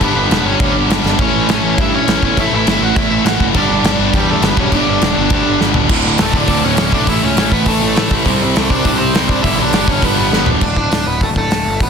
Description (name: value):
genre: punk rock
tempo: 204 BPM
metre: 4/4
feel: straight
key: unclear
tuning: A4 = 441 Hz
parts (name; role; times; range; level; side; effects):
- overdriven electric guitar; melody; 0.0-11.9 s; G3 to F#5; -19 LUFS; equal; digital delay
- tight distorted guitar; riff; 0.0-10.6 s; D2 to A4; -18 LUFS; left 17 dB; distortion
- tight distorted guitar; riff; 0.0-10.6 s; D2 to C4; -19 LUFS; right 16 dB; distortion
- fuzz picked electric bass; bass; 0.0-11.9 s; D1 to G2; -20 LUFS; equal; overdrive
- loose indie drum kit; drums; 0.0-11.9 s; crash cymbal, hi-hat, kick drum, snare drum, toms; -16 LUFS; equal; none
- thick fuzz guitar; riff; 1.2-10.6 s; D2 to C4; -23 LUFS; right 1 dB; none
room: little or no reverb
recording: dense, heavily limited modern master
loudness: -11 LUFS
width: side -6 dB against mid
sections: 0.0-5.9 A section; 5.9-10.6 B section; 10.6-11.9 C section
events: drum fill 1.1, 5.6, 10.3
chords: 0.0 G; 1.2 A; 3.6 G; 5.9 D5; 7.1 A; 8.3 C5; 9.4 G; 10.6 D5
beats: | 0.02 0.31 0.61 0.90 | 1.20 1.49 1.79 2.08 | 2.38 2.67 2.96 3.26 | 3.55 3.85 4.14 4.44 | 4.73 5.02 5.32 5.61 | 5.91 6.20 6.50 6.79 | 7.08 7.38 7.67 7.97 | 8.26 8.56 8.85 9.15 | 9.44 9.74 10.03 10.33 | 10.62 10.92 11.21 11.51 | 11.81